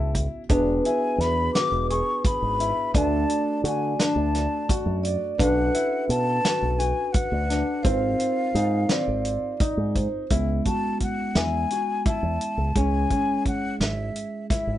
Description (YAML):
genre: progressive instrumental, band music in an uneven meter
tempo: 171 BPM (eighths)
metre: 7/8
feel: straight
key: unclear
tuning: A4 = 440 Hz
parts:
  - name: mellow hollow silver concert flute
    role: melody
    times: 0.0-14.8 s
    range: E5 to D6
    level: -28 LUFS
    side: left 3 dB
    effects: none
  - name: bell-like tine electric piano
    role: accompaniment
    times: 0.0-14.8 s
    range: G#3 to A#4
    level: -32 LUFS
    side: right 3 dB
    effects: none
  - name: dark concert grand piano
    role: arpeggios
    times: 0.0-14.8 s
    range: B#3 to G#4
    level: -29 LUFS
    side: left 3 dB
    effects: none
  - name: fingered electric bass with an envelope filter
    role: bass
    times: 0.0-14.8 s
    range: E1 to D3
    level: -26 LUFS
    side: equal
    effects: none
  - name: warm soul drum kit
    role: drums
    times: 0.1-14.7 s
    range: hi-hat, kick drum, snare drum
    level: -25 LUFS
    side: equal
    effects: none
  - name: vibraphone with soft mallets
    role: second line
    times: 0.5-10.3 s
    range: B4 to D5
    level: -28 LUFS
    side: right 3 dB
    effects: none
room: moderate small room reverb, RT60 0.5 s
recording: band playing live in one room, nothing above 10.3 kHz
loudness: -21 LUFS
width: side -13 dB against mid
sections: 0.0-10.3 A section; 10.3-14.8 B section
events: none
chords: 0.5 E7; 2.9 D; 5.4 Bm7; 7.9 G#6; 10.3 Amaj7/C#; 12.8 C#m